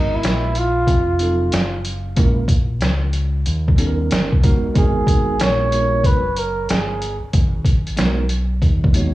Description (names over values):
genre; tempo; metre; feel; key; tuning
hip hop, jazz-hop; 93 BPM; 4/4; swing 66% on 16ths; G# minor; A4 = 441 Hz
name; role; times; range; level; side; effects
breathy flugelhorn; melody; 0.0-7.2 s; D#4 to C#5; -21 LUFS; right 1 dB; cassette tape, tape echo
bell-like tine electric piano; accompaniment; 0.0-9.1 s; Gb3 to D#5; -23 LUFS; right 2 dB; fast stereo tremolo, cassette tape
deep dub fingered electric bass; bass; 0.0-9.1 s; F1 to D#2; -21 LUFS; equal; none
trip hop sampler-style drum kit; drums; 0.2-9.1 s; hi-hat, kick drum, snare drum; -18 LUFS; equal; cassette tape
room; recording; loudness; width
little or no reverb; home recording on cassette, studio reverb; -15 LUFS; side -16 dB against mid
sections
0.0-9.1 A section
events
none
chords
0.0 G#m9; 0.9 F7b9; 2.2 A#m7b5; 3.5 D#7b13; 4.8 G#m9